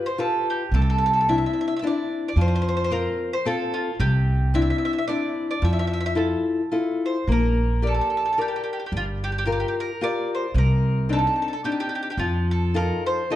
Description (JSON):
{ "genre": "italian folk, Italian serenade", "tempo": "110 BPM", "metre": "3/4", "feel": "swing 54% on 8ths, rubato", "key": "F major, Bb major from 7.3 s", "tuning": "A4 = 440 Hz", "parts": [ { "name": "bowl-back mandolin", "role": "melody", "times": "0.0-13.4 s", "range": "F4 to E5", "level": "-26 LUFS", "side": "right 1 dB", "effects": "none" }, { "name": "nylon-string guitar", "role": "accompaniment", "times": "0.0-13.4 s", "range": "C3 to D5", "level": "-25 LUFS", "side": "left 3 dB", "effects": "none" }, { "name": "upright bass", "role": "bass", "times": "0.7-12.9 s", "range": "G1 to F2", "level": "-22 LUFS", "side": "right 1 dB", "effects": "none" } ], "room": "moderate recital hall reverb, RT60 1.6 s", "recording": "dark, warm production", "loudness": "-21 LUFS", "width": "side -13 dB against mid", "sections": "0.0-7.3 A section; 7.3-13.4 B section", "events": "none", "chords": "0.0 G7; 0.7 Cadd9; 2.4 F; 4.0 Cadd9; 5.6 Fmaj7; 7.3 Bb6; 8.9 Gm7; 10.6 Cmadd9; 12.2 F7" }